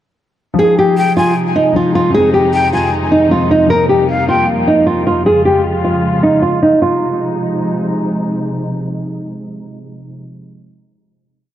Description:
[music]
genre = hip hop, trap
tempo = 154 BPM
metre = 4/4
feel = half-time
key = F minor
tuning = A4 = 440 Hz
[part]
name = dark grand piano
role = accompaniment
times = 0.5-5.3 s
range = F2 to Ab4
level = -18 LUFS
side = left 2 dB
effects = none
[part]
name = nylon-string guitar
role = melody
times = 0.6-7.9 s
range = Eb4 to Bb4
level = -12 LUFS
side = right 1 dB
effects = tape echo
[part]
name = dark studio string section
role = sustained chords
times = 0.6-10.2 s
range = F2 to F4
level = -19 LUFS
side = equal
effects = none
[part]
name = breathy jazz flute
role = second line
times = 1.0-4.5 s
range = F5 to Ab5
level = -18 LUFS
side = left 4 dB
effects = tape echo
[sound]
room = light reverb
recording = dark, warm production, low-pass filter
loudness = -11 LUFS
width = side -11 dB against mid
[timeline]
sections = 0.6-6.8 breakdown; 6.8-9.9 final chord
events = filter sweep 0.6-6.8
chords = 0.6 Fm7; 2.1 Ab/F; 3.7 Cm7/F; 5.3 Db/F; 6.8 Fm7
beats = | 0.58 0.97 1.36 1.75 | 2.14 2.53 2.92 3.31 | 3.70 4.09 4.48 4.87 | 5.26 5.65 6.04 6.43 | 6.82 7.21 7.60 7.99 | 8.38 8.77 9.16 9.55

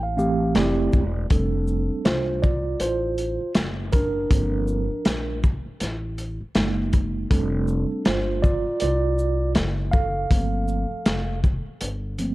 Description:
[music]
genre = hip hop, jazz-hop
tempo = 80 BPM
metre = 4/4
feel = swing 59% on 16ths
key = F major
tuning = A4 = 442 Hz
[part]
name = mellow tine electric piano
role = accompaniment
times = 0.0-12.3 s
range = E3 to F5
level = -25 LUFS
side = right 2 dB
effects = medium stereo tremolo
[part]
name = upright bass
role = bass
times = 0.0-12.3 s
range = E1 to C2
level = -27 LUFS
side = equal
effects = none
[part]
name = crunchy breakbeat drum kit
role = drums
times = 0.2-12.3 s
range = hi-hat, kick drum, shaker, snare drum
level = -22 LUFS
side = equal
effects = none
[sound]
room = light reverb, studio ambience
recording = dark, warm production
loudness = -21 LUFS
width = side -18 dB against mid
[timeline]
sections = 0.0-1.3 A section; 1.3-12.3 B section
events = tine electric piano fill 0.0-1.3; tine electric piano solo 1.3-12.3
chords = 0.0 G9sus4; 0.6 Fmaj7; 1.3 F69; 4.3 Gm11; 6.6 Gb69; 7.3 F69; 10.3 Gm11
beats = 0.56 | 1.31 2.06 2.81 3.56 | 4.31 5.06 5.81 6.56 | 7.31 8.06 8.81 9.56 | 10.31 11.06 11.81

